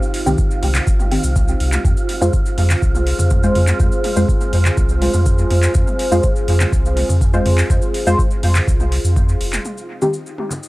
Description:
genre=dub techno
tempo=123 BPM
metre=4/4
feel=straight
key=unclear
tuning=A4 = 440 Hz
part: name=deep dark ambient pad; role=sustained chords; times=0.0-10.7 s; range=C4 to C5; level=-25 LUFS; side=equal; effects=chorus, built-in reverb, sidechain pumping
part: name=cabasa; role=percussion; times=0.0-10.7 s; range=none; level=-31 LUFS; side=left 2 dB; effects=none
part: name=wind-like tuned noise texture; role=texture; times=0.0-10.7 s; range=Eb4 to F4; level=-29 LUFS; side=right 4 dB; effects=built-in reverb, sidechain pumping
part: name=deep house drum kit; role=drums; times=0.1-10.6 s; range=handclaps, hi-hat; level=-25 LUFS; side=equal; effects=overdrive, low-pass filter on hats, studio ambience, low-pass filter on snare, dub echo
part: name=deep mellow chord stab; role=stabs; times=0.3-10.2 s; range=Eb3 to C5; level=-22 LUFS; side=equal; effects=chorus, phaser, sidechain pumping, dub echo
part: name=warm sub bass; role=bass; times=0.3-9.6 s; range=F1 to F2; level=-17 LUFS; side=equal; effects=sidechain pumping
part: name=electronic toms and congas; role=percussion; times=0.3-10.6 s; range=none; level=-31 LUFS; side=left 1 dB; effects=overdrive, sidechain pumping on toms, studio ambience, sidechain pumping on perc, dub echo
part: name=electronic kick drum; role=drums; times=0.4-9.3 s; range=none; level=-18 LUFS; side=equal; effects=studio ambience
room=little or no reverb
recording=dry, gritty hardware recording, cassette tape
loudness=-14 LUFS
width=side -20 dB against mid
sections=0.0-9.7 A section; 9.7-10.7 B section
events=filter sweep on drum 9.7-10.7; filter sweep on ambient pad 9.7-10.7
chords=0.0 Cm; 1.8 Fm; 9.7 Cm

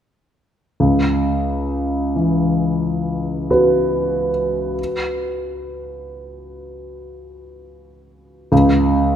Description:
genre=classical, impressionist solo piano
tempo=44-50 BPM (dotted quarters)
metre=9/8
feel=rubato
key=C# minor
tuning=A4 = 444 Hz
part: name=clear concert grand piano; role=solo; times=0.8-9.2 s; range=C#2 to B4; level=-17 LUFS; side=equal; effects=none
room=wet concert hall reverb, RT60 1.8 s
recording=none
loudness=-16 LUFS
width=side -9 dB against mid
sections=0.8-9.2 A section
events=none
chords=0.8 C#m7

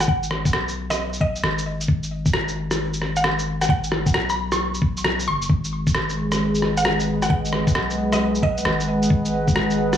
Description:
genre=future garage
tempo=133 BPM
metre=4/4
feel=swing 66% on 16ths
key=G# minor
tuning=A4 = 440 Hz
part: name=mallet-like synth pluck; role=melody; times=0.0-9.1 s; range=D#5 to C#6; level=-26 LUFS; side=right 1 dB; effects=chorus, analog delay
part: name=soft dub sub bass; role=bass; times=0.0-10.0 s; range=F#1 to B1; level=-27 LUFS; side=left 1 dB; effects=sidechain pumping
part: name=electronic rim click and shaker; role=drums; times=0.0-10.0 s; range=none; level=-24 LUFS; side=equal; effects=none
part: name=electronic kick drum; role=drums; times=0.1-9.5 s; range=none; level=-21 LUFS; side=equal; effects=none
part: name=warbly tape-like pad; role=sustained chords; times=5.8-10.0 s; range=G#3 to F#5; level=-22 LUFS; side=equal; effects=chorus, built-in reverb, phaser, sidechain pumping
room=moderate plate reverb, RT60 1.0 s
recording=dreamy mix soaked in reverb, vinyl crackle, small room ambience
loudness=-19 LUFS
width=side -9 dB against mid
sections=0.0-10.0 A section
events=none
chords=0.0 G#m; 5.5 B/G#

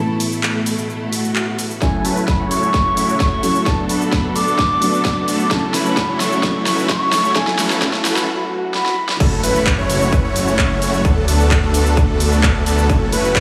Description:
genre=EDM, festival progressive house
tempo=130 BPM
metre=4/4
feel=straight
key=F# minor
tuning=A4 = 440 Hz
part: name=reedy baroque flute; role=melody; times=0.0-9.2 s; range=G#5 to D6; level=-24 LUFS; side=equal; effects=dub echo
part: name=felt-muted upright piano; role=accompaniment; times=0.0-9.2 s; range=A2 to E4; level=-25 LUFS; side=equal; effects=sidechain pumping, dub echo
part: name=bright studio string section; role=sustained chords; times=0.0-8.3 s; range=B2 to A4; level=-29 LUFS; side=equal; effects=sidechain pumping, low-pass filter
part: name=big-room dance drum kit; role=drums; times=0.2-13.4 s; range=crash cymbal, handclaps, hi-hat, shaker, snare drum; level=-24 LUFS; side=equal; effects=overdrive, studio reverb
part: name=swell, riser and impact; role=sound effects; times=1.1-11.0 s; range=none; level=-32 LUFS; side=equal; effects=none
part: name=dense compressed supersaw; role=riff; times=1.8-13.4 s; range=A3 to C#5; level=-24 LUFS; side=equal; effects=sidechain pumping, low-pass filter, dub echo
part: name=electronic kick drum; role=drums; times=1.8-13.4 s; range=none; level=-21 LUFS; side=equal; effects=overdrive, studio reverb
part: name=unison lead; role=arpeggios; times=9.2-13.4 s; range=A4 to C#5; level=-24 LUFS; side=equal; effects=sidechain pumping, dub echo
part: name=detuned saw bass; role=bass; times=9.2-13.4 s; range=F#1 to D2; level=-21 LUFS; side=equal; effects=chorus, sidechain pumping
room=moderate lush hall reverb, RT60 2.2 s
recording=high-pass filter, studio reverb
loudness=-17 LUFS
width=mono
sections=0.0-1.8 A section; 1.8-9.2 B section; 9.2-13.4 C section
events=swell 1.1-1.8, 8.3-9.2; build-up 1.8-9.2; drum fill 1.8-8.3, 8.7-9.2; filter sweep on supersaw synth 1.8-9.2; filter sweep 1.8-9.2; drop 9.2-13.4; impact 9.2-11.0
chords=0.0 Asus2; 1.8 F#m7; 3.7 D6; 5.5 F#m7; 11.0 D6; 12.9 F#m7

